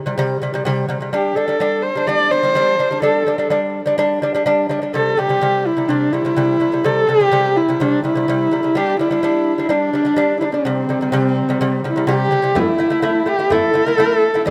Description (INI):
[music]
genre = mongolian traditional, Mongolian folk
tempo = 126 BPM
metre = 4/4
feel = straight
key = C gong mode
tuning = A4 = 442 Hz
[part]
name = lute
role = arpeggios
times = 0.1-14.5 s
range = C3 to E4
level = -21 LUFS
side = equal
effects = none
[part]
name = rich horsehead fiddle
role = melody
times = 1.1-14.5 s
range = C4 to D5+22c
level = -19 LUFS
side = equal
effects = none
[part]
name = frame drum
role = percussion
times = 12.6-14.5 s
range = none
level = -28 LUFS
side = equal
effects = none
[sound]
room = light reverb, small room reverb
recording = rough home demo mix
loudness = -17 LUFS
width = mono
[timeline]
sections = 0.0-12.6 A section; 12.6-14.5 B section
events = none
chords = 0.0 C5; 1.1 G5; 4.9 C5; 8.8 G5; 10.7 C5; 12.6 A5